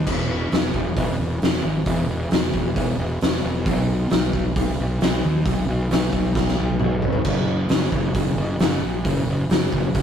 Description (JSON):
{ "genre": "blues rock power trio and southern rock", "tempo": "133 BPM", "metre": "4/4", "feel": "straight", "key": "B major", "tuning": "A4 = 439 Hz", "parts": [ { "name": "fuzz fingered electric bass", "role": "bass", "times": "0.0-10.0 s", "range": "E1 to D#2", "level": "-22 LUFS", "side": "equal", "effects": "overdrive" }, { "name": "oversized low-tuned drum kit", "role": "drums", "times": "0.1-10.0 s", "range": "crash cymbal, hi-hat, kick drum, snare drum, toms", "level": "-22 LUFS", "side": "equal", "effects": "none" } ], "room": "light reverb", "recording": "rough rehearsal-room recording, tube saturation", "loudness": "-19 LUFS", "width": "side -8 dB against mid", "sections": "0.0-10.0 A section", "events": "drum fill 6.4-7.3", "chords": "none" }